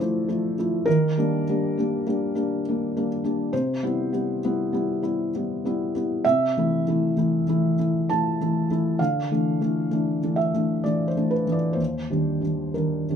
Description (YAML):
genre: neoclassical minimalist piano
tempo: 66 BPM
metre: 3/4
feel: uneven beats, rubato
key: unclear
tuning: A4 = 440 Hz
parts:
  - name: felt-muted upright piano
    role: solo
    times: 0.0-13.2 s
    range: Eb2 to A5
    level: -22 LUFS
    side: equal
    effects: none
room: light reverb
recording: minimal, uncompressed stereo recording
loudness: -22 LUFS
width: side -8 dB against mid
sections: 0.0-13.2 A section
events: none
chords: 0.0 Dmadd9; 0.9 Ebmaj7; 3.5 Cmaj7; 6.2 Am/C; 9.0 Dmadd9; 11.8 Ebmaj7